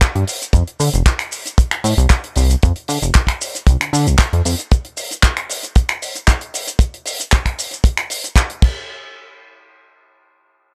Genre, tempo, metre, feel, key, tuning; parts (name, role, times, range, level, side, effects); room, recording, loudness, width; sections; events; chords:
nu-disco, nu disco; 115 BPM; 4/4; straight; A4 = 439 Hz
damped 70s drum kit; drums; 0.0-8.7 s; crash cymbal, finger snaps, handclaps, hi-hat, shaker; -23 LUFS; equal
kick drum; drums; 0.0-8.7 s; -14 LUFS; equal
chorused synth bass; bass; 0.2-4.6 s; F1 to D3; -17 LUFS; equal
little or no reverb; -17 LUFS; mono
0.0-8.9 A section; 8.9-10.7 B section
drop 0.0-8.9